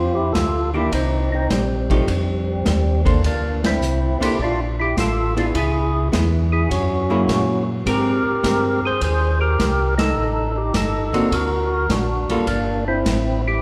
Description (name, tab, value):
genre	soul jazz organ trio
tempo	104 BPM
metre	4/4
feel	swing 69% on 8ths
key	unclear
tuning	A4 = 440 Hz
part	percussive tonewheel organ	melody	0.0-13.6 s	G3 to C5	-24 LUFS	equal	slow rotary speaker, overdrive
part	mellow tonewheel organ	bass	0.0-13.6 s	G1 to Bb2	-24 LUFS	equal	slow rotary speaker
part	vintage drum kit	drums	0.3-13.2 s	hi-hat, kick drum, ride cymbal, snare drum	-28 LUFS	equal	none
part	archtop guitar, miked and amplified	accompaniment	0.7-12.5 s	D3 to C5	-26 LUFS	equal	none
room	wet recital hall reverb, RT60 1.7 s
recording	recorded in a church or concert hall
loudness	-20 LUFS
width	mono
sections	0.0-13.6 A section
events	band accent 3.5, 9.9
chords	0.0 Fmaj9; 0.9 Cm7; 2.1 F9; 3.2 Bbmaj9; 5.5 Dbm7; 6.7 Gb9; 7.9 Abmaj9; 10.2 Am7b5; 11.3 D; 12.5 Gmadd9